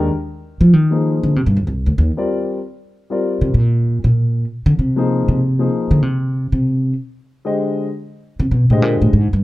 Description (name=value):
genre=modal jazz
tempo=192 BPM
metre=4/4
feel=swing 64% on 8ths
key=C minor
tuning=A4 = 440 Hz
part: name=warm grand piano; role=accompaniment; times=0.0-9.1 s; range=D3 to Eb5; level=-20 LUFS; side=left 3 dB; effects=none
part: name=upright bass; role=bass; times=0.0-9.4 s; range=C2 to F3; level=-14 LUFS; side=equal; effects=none
room=little or no reverb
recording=dark, warm production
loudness=-14 LUFS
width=side -17 dB against mid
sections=0.1-9.4 A section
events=upright bass solo 0.1-9.4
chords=0.1 Cm9; 5.1 Fm9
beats=| 0.10 0.41 0.72 1.03 | 1.35 1.66 1.97 2.28 | 2.59 2.91 3.22 3.53 | 3.84 4.15 4.46 4.78 | 5.09 5.40 5.71 6.02 | 6.33 6.64 6.96 7.27 | 7.58 7.89 8.20 8.51 | 8.82 9.13